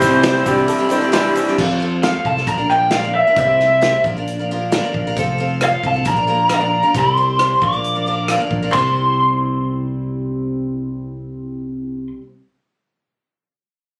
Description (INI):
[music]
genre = folk rock and heartland rock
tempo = 134 BPM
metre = 4/4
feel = straight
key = C mixolydian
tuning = A4 = 440 Hz
[part]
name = lead guitar through a small cranked amp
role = melody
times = 0.0-12.1 s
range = C5 to D6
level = -18 LUFS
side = equal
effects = overdrive
[part]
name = clear upright piano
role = accompaniment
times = 0.0-1.6 s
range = E4 to E5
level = -32 LUFS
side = equal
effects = none
[part]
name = picked twelve-string acoustic guitar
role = accompaniment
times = 0.0-12.3 s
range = Bb2 to C5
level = -25 LUFS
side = equal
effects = none
[part]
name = electric guitar through a small old amp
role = riff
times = 0.0-1.6 s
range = C3 to E4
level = -19 LUFS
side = equal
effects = warbly pitch drift
[part]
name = fingered electric bass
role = bass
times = 0.0-12.1 s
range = F1 to C3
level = -25 LUFS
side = equal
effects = none
[part]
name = natural country drum kit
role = drums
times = 0.0-8.8 s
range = crash cymbal, hi-hat, kick drum, rim click, snare drum, splash cymbal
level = -25 LUFS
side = equal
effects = none
[part]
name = egg shaker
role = percussion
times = 0.0-1.5 s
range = none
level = -40 LUFS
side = equal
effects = none
[part]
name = clear upright piano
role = second line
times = 0.4-1.5 s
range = F#4 to C5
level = -24 LUFS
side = equal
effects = none
[sound]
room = light reverb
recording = recorded on a phone in the room, studio reverb, compression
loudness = -17 LUFS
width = mono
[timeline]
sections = 0.0-1.6 A section; 1.6-8.7 B section; 8.7-12.3 C section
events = none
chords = 0.5 Cadd9; 1.6 F; 2.5 Bb; 3.4 C; 4.0 Bb; 5.2 F; 6.1 Bb; 6.9 C; 7.6 Bb; 8.7 C